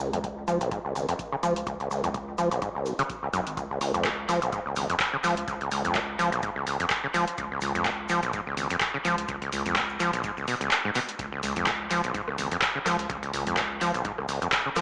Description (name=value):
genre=acid house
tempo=126 BPM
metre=4/4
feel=swing 56% on 16ths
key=Db mixolydian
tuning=A4 = 440 Hz
part: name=acid bass, saw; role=riff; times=0.0-14.8 s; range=Cb2 to F3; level=-27 LUFS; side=equal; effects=overdrive, sidechain pumping, dub echo
part: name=saturated sub bass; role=bass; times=0.0-14.8 s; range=Ab1 to Db2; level=-37 LUFS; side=equal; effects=sidechain pumping
part: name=egg shaker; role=percussion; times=0.0-14.8 s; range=none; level=-46 LUFS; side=equal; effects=none
part: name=booming analog drum machine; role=drums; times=0.1-14.8 s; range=handclaps, hi-hat, rim click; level=-29 LUFS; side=equal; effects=dub echo
part: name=electronic kick drum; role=drums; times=0.2-14.6 s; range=none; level=-43 LUFS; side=equal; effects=none
part: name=breakbeat sampler-style drum kit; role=drums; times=11.2-14.8 s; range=hi-hat, snare drum, tambourine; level=-40 LUFS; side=equal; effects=none
room=wet spring reverb, RT60 1.3 s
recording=echo-heavy mix, small speaker sound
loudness=-25 LUFS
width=side -29 dB against mid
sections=0.0-14.8 A section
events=filter sweep on acid bass 0.0-14.8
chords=0.0 Db5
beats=0.24 0.71 1.19 | 1.67 2.14 2.62 3.10 | 3.57 4.05 4.53 5.00 | 5.48 5.95 6.43 6.91 | 7.38 7.86 8.34 8.81 | 9.29 9.76 10.24 10.71 | 11.19 11.67 12.14 12.62 | 13.10 13.57 14.05 14.53